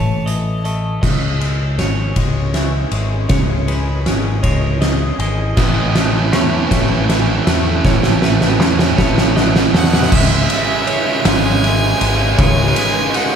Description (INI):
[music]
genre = post-rock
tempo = 53 BPM (dotted quarters)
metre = 6/8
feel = straight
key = unclear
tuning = A4 = 439 Hz
[part]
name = clear violin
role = melody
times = 0.0-0.6, 9.8-13.4 s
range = E5 to A5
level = -21 LUFS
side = left 1 dB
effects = slapback echo
[part]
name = electric guitar through a small old amp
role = arpeggios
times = 0.0-13.4 s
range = B4 to E5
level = -26 LUFS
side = right 2 dB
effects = spring reverb, slapback echo
[part]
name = twangy electric guitar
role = arpeggios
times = 0.0-10.1 s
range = A2 to C#4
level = -27 LUFS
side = left 3 dB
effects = slapback echo
[part]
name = growling picked electric bass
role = bass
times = 0.0-12.7 s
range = G#1 to E2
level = -18 LUFS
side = equal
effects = overdrive
[part]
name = oversized low-tuned drum kit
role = drums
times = 0.3-13.3 s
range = crash cymbal, hi-hat, kick drum, ride cymbal, snare drum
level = -16 LUFS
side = equal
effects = none
[part]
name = analog string pad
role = sustained chords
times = 1.7-13.4 s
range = E3 to D#5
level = -28 LUFS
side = left 2 dB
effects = none
[part]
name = distorted electric guitar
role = riff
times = 5.6-13.4 s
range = A2 to G#3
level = -19 LUFS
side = right 6 dB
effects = distortion
[sound]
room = moderate lush hall reverb, RT60 2.3 s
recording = big arena sound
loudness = -13 LUFS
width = side -7 dB against mid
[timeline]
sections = 0.0-1.0 A section; 1.0-10.1 B section; 10.1-13.4 C section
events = build-up 1.0-10.1; drum fill 1.0-10.1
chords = 0.0 A; 1.0 C#m; 5.6 A; 10.1 C#m